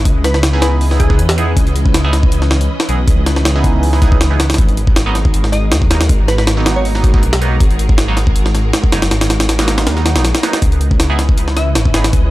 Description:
drum and bass, jungle; 159 BPM; 4/4; swing 53% on 16ths; C# dorian; A4 = 442 Hz
soft string machine; sustained chords; 0.0-12.3 s; E3 to D#5; -24 LUFS; equal; ensemble chorus
dark detuned saw bass; bass; 0.0-12.3 s; F#1 to E2; -15 LUFS; equal
jungle sampler-style drum kit; drums; 0.1-12.2 s; hi-hat, kick drum, snare drum; -14 LUFS; equal
glassy wavetable pluck; melody; 0.2-1.5, 5.5-7.0, 11.6-11.8 s; G#4 to E5; -24 LUFS; equal; chorus, dub echo
band-passed chord stab; stabs; 0.5-12.0 s; F#3 to G#4; -22 LUFS; right 4 dB; phaser, dub echo
digital ambience; dry, gritty hardware recording, transformer saturation; -11 LUFS; side -17 dB against mid
0.0-12.3 A section
0.0 C#m9; 4.6 G#m9; 10.6 C#m9

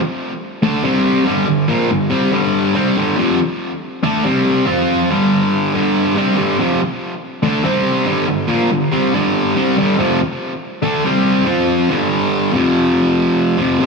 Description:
rock; 141 BPM; 4/4; straight; A4 = 440 Hz
sludgy distorted guitar; solo; 0.6-13.9 s; F2 to F4; -14 LUFS; equal; overdrive, digital delay
moderate plate reverb, RT60 2.6 s; heavily compressed radio sound, small room ambience; -14 LUFS; side -4 dB against mid
0.0-12.5 A section; 12.5-13.9 B section
0.0 N.C.; 0.8 C5; 1.3 G5; 4.2 C5; 4.7 F5; 5.1 G5; 7.6 C5; 8.1 G5; 11.0 C5; 11.5 F5; 11.9 G5; 12.5 F5

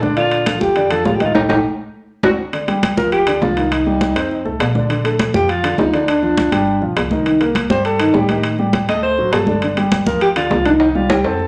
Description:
Afro-Cuban jazz; 203 BPM; 4/4; straight; A4 = 443 Hz
breathy alto saxophone; melody; 0.0-11.5 s; D4 to Eb5; -20 LUFS; equal
dark concert grand piano; accompaniment; 0.0-11.5 s; D3 to Eb5; -21 LUFS; equal
upright bass; bass; 0.0-11.5 s; G1 to A2; -27 LUFS; equal
congas; percussion; 0.0-11.5 s; -24 LUFS; equal
timbales; percussion; 0.2-11.3 s; -24 LUFS; equal
moderate large studio reverb, RT60 0.8 s; -16 LUFS; mono
0.0-2.5 A section; 2.5-11.5 B section
drum fill 1.4-2.5, 10.8-11.5; band accent 1.4-2.5
0.2 Bbmaj7; 1.4 Eb; 1.9 D7; 2.5 G5; 3.7 Cm; 4.3 F7; 4.9 Bbmaj7; 6.1 Dmadd11; 6.7 G7; 7.3 Cm7; 8.4 Ebmaj7#11; 9.0 D7; 9.6 G5; 10.8 Cmadd11

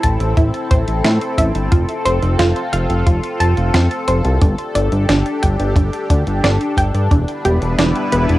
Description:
synthwave; 89 BPM; 4/4; straight; A4 = 441 Hz
lush unison pad; sustained chords; 0.0-8.4 s; G3 to B4; -21 LUFS; left 1 dB; chorus, phaser, sidechain pumping, cassette tape
analog pluck; arpeggios; 0.0-8.4 s; D4 to A5; -21 LUFS; right 2 dB; chorus, cassette tape, tape echo
fat analog bass; bass; 0.0-8.4 s; E1 to A2; -16 LUFS; equal; sidechain pumping
clean 12-bit digital drum machine; drums; 0.0-8.4 s; hi-hat, snare drum; -22 LUFS; equal; cassette tape
kick drum; drums; 0.0-7.2 s; -14 LUFS; equal; cassette tape
light reverb; home recording on cassette; -14 LUFS; side -16 dB against mid
0.0-8.4 A section
0.0 Am; 1.7 F; 4.4 Gsus2; 7.1 Em7

